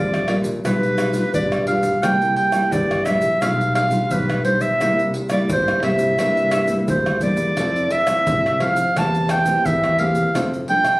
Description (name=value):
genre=samba and choro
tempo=86 BPM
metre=4/4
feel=straight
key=unclear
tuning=A4 = 440 Hz
part: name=clear clarinet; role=melody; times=0.0-11.0 s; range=B4 to A5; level=-19 LUFS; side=equal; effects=plate reverb
part: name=nylon-string guitar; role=accompaniment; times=0.0-11.0 s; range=G2 to A4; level=-24 LUFS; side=equal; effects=none
part: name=fingered electric bass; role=bass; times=0.0-10.6 s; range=Bb1 to F3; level=-24 LUFS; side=equal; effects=none
part: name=egg shaker, pandeiro, tamborim and surdo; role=percussion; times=0.1-11.0 s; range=none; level=-26 LUFS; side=equal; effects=none
room=moderate studio reverb, RT60 0.8 s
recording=recorded on a phone in the room, club reverb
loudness=-16 LUFS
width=side -20 dB against mid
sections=0.0-11.0 A section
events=none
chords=0.0 Bb6; 0.6 G7/B; 2.0 C7; 3.4 G7/B; 4.8 C7; 7.6 Fmaj7; 9.0 C7/E; 10.4 Dm7/F